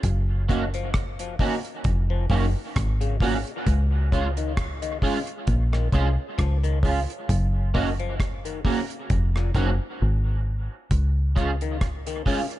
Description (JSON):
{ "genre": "dub reggae", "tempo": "66 BPM", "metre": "4/4", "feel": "swing 56% on 16ths", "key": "unclear", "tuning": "A4 = 440 Hz", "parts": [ { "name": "deep dub fingered electric bass", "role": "bass", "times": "0.0-12.2 s", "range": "F1 to Db2", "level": "-23 LUFS", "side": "equal", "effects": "none" }, { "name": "deep reggae drum kit", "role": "drums", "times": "0.0-12.6 s", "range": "hi-hat, kick drum, rim click", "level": "-26 LUFS", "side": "equal", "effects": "none" }, { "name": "electric guitar at the edge of break-up", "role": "accompaniment", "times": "0.5-12.4 s", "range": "Ab3 to Gb4", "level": "-30 LUFS", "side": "right 4 dB", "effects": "ensemble chorus, dub echo" }, { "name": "overdriven clav", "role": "arpeggios", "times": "0.5-12.5 s", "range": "Ab2 to F3", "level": "-34 LUFS", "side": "left 8 dB", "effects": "phaser, dub echo" } ], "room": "small room ambience", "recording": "echo-heavy mix, nothing above 10.6 kHz", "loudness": "-22 LUFS", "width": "side -15 dB against mid", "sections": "0.0-12.6 A section", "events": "break 10.0-10.9", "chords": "0.0 Gb; 3.7 Db; 7.3 Gb; 10.9 Db", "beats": "| 0.04 0.94 1.85 2.76 | 3.67 4.57 5.48 6.38 | 7.29 8.19 9.10 10.00 | 10.91 11.81" }